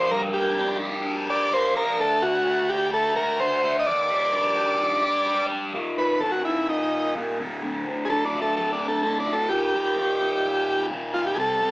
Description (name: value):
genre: rock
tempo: 128 BPM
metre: 4/4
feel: straight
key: unclear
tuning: A4 = 439 Hz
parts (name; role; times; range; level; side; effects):
- combo organ; melody; 0.0-11.7 s; D4 to Eb5; -22 LUFS; equal; none
- fuzz guitar; riff; 0.0-11.7 s; D2 to G4; -26 LUFS; equal; distortion, phaser
room: moderate studio reverb, RT60 0.5 s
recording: rough rehearsal-room recording, small speaker sound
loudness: -21 LUFS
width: side -22 dB against mid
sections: 0.0-5.7 A section; 5.7-11.7 B section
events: transistor combo organ solo 5.7-11.7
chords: 0.0 Gm; 2.0 D; 3.9 Ebmaj7; 5.7 Eb5; 7.4 D5; 9.5 Eb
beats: | 0.11 0.57 1.04 1.51 | 1.98 2.45 2.92 3.39 | 3.86 4.33 4.80 5.27 | 5.74 6.21 6.68 7.15 | 7.62 8.09 8.56 9.03 | 9.50 9.97 10.44 10.91 | 11.38